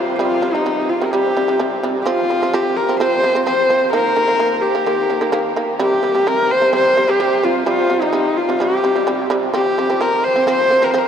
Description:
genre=mongolian traditional, Mongolian folk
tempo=128 BPM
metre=4/4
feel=straight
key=C yu mode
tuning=A4 = 441 Hz
part: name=rich horsehead fiddle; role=melody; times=0.0-11.1 s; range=Eb4 to C5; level=-16 LUFS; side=left 1 dB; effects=none
part: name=shamisen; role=arpeggios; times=0.0-11.1 s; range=C3 to C4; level=-19 LUFS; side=right 2 dB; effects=none
room=wet huge ambient reverb, RT60 8.2 s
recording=in a vast, echoing space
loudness=-14 LUFS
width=side -8 dB against mid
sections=0.0-11.1 A section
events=none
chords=0.0 C5; 2.1 F5; 3.9 Eb5; 5.8 C5; 9.5 F5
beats=| 0.20 0.67 1.14 1.60 | 2.07 2.54 3.01 3.48 | 3.94 4.41 4.88 5.35 | 5.81 6.28 6.75 7.21 | 7.68 8.15 8.61 9.08 | 9.55 10.01 10.48 10.95

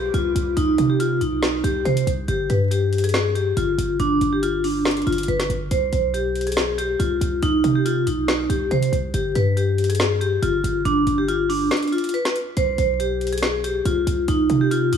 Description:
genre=hip hop, trap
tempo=140 BPM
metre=4/4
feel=half-time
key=C harmonic minor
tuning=A4 = 438 Hz
part: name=vibraphone with medium mallets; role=melody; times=0.0-15.0 s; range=D4 to C5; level=-21 LUFS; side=equal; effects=digital delay
part: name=concert harp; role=accompaniment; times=0.0-1.5 s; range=none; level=barely audible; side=none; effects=none
part: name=hard-hitting 808-style bass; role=bass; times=0.0-15.0 s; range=G1 to C3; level=-23 LUFS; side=equal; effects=none
part: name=trap drum kit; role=drums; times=0.1-15.0 s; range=hi-hat, snare drum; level=-26 LUFS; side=equal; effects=none
room=light reverb, small room ambience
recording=vinyl crackle, studio ambience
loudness=-18 LUFS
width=side -7 dB against mid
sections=0.0-15.0 A section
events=break 11.7-12.6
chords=0.0 Cm; 2.3 G5; 5.7 Cm; 9.1 G5; 12.6 C5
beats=0.14 | 0.57 1.00 1.43 1.85 | 2.28 2.71 3.14 3.57 | 4.00 4.43 4.85 5.28 | 5.71 6.14 6.57 7.00 | 7.43 7.85 8.28 8.71 | 9.14 9.57 10.00 10.43 | 10.85 11.28 11.71 12.14 | 12.57 13.00 13.43 13.85 | 14.28 14.71

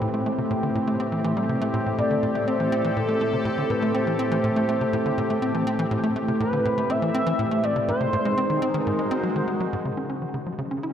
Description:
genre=ambient, sequencer-driven space music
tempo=122 BPM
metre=4/4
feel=straight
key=A dorian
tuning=A4 = 441 Hz
part: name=sweeping resonant pad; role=sustained chords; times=0.0-10.9 s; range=A2 to D#5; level=-25 LUFS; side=left 1 dB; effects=chorus
part: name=tight sequencer bass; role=riff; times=0.0-10.9 s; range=G#2 to E4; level=-27 LUFS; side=equal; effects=analog chorus, analog delay
part: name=expressive synth lead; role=melody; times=2.0-9.3 s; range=A4 to E5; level=-27 LUFS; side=equal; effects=analog chorus, analog delay
part: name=wind-like tuned noise texture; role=texture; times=10.8-10.9 s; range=none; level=barely audible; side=none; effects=none
room=wet cathedral reverb, RT60 4.8 s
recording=in a vast, echoing space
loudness=-22 LUFS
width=side -9 dB against mid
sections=0.0-9.8 A section; 9.8-10.9 B section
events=none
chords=0.0 Am7; 7.9 G#7; 9.8 C#madd9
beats=| 0.01 0.50 1.00 1.49 | 1.98 2.47 2.96 3.46 | 3.95 4.44 4.93 5.42 | 5.91 6.41 6.90 7.39 | 7.88 8.37 8.87 9.36 | 9.85 10.34 10.83

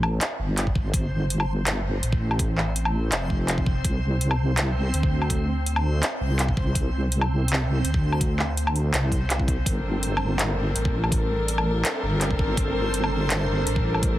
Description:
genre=half-time drum and bass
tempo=165 BPM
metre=4/4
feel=swing 53% on 16ths, half-time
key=unclear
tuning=A4 = 440 Hz
part: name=deep soft wobble bass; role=bass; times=0.0-14.2 s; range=F1 to D2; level=-24 LUFS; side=equal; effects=chorus
part: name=drum and bass drum kit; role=drums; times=0.0-14.1 s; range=handclaps, hi-hat, woodblock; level=-28 LUFS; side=equal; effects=none
part: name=backwards swelling texture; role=texture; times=0.0-14.2 s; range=C4 to C5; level=-34 LUFS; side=right 2 dB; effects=built-in reverb
part: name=electronic kick drum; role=drums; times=0.7-14.1 s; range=none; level=-25 LUFS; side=equal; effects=none
part: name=warm chamber string section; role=sustained chords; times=9.7-14.2 s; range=G3 to Bb4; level=-28 LUFS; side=left 2 dB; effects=sidechain pumping
room=digital ambience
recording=heavily compressed radio sound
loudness=-21 LUFS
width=side -14 dB against mid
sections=0.0-14.2 A section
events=none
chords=0.0 Fadd9; 3.8 Csus2; 9.7 Gm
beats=0.21 0.57 | 0.94 1.30 1.67 2.03 | 2.39 2.76 3.12 3.48 | 3.85 4.21 4.57 4.94 | 5.30 5.67 6.03 6.39 | 6.76 7.12 7.48 7.85 | 8.21 8.57 8.94 9.30 | 9.66 10.03 10.39 10.76 | 11.12 11.48 11.85 12.21 | 12.57 12.94 13.30 13.66 | 14.03

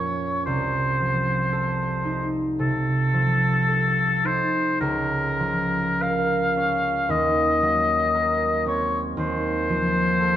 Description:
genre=classical, romantic duo for oboe and harp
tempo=48-59 BPM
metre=4/4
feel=rubato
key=unclear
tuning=A4 = 442 Hz
part: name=clear oboe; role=melody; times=0.0-10.4 s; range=A4 to F5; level=-23 LUFS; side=left 2 dB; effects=none
part: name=concert harp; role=accompaniment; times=0.0-10.4 s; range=C2 to Bb4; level=-24 LUFS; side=right 2 dB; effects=none
room=moderate concert hall reverb, RT60 1.9 s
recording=dark, warm production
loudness=-20 LUFS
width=side -11 dB against mid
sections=0.0-10.4 A section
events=none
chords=0.5 F7/C; 4.8 Bbm/Db; 7.1 Cm7b5/Eb; 9.2 F7/Eb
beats=| 0.47 1.54 2.60 3.71 | 4.82 6.02 7.10 8.15 | 9.19 10.21

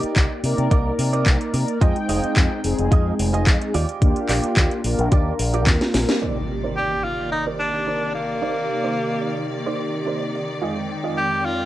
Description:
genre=nu-disco, nu disco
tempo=109 BPM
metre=4/4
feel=straight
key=C minor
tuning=A4 = 440 Hz
part: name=mellow synth brass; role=accompaniment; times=0.0-11.7 s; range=F2 to G5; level=-25 LUFS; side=equal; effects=chorus, vintage 12-bit sampler grit, cassette tape, tape echo
part: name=direct-recorded clean electric guitar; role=riff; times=0.0-11.3 s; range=Eb4 to Eb5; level=-29 LUFS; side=right 6 dB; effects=ensemble chorus, low-pass filter, cassette tape, tape echo
part: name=fingered electric bass with an envelope filter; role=bass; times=0.0-6.0 s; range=F1 to C3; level=-23 LUFS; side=equal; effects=sidechain pumping
part: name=house drum kit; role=drums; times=0.0-6.2 s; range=handclaps, hi-hat, snare drum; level=-24 LUFS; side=equal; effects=overdrive, cassette tape
part: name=electronic kick drum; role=drums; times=0.2-5.8 s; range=none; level=-17 LUFS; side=equal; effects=cassette tape
part: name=clear symphonic string section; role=sustained chords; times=6.2-11.7 s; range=Eb3 to D5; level=-30 LUFS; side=left 2 dB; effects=sidechain pumping, cassette tape
part: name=impact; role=sound effects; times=6.2-8.4 s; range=none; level=-33 LUFS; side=equal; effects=none
part: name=breathy tenor saxophone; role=melody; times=6.8-11.7 s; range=Bb3 to G4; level=-24 LUFS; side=equal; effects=cassette tape
room=light reverb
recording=home recording on cassette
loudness=-19 LUFS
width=side -14 dB against mid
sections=0.0-6.2 A section; 6.2-11.7 B section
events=drum fill 5.7-6.2; band accent 6.1; impact 6.2-8.4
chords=0.0 Cm9; 1.8 Fm7; 3.7 Ebmaj9; 6.2 Cm9; 10.6 Fm7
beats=0.17 0.71 1.27 | 1.82 2.37 2.92 3.47 | 4.02 4.57 5.12 5.67 | 6.22 6.77 7.32 7.87 | 8.42 8.97 9.52 10.07 | 10.62 11.17

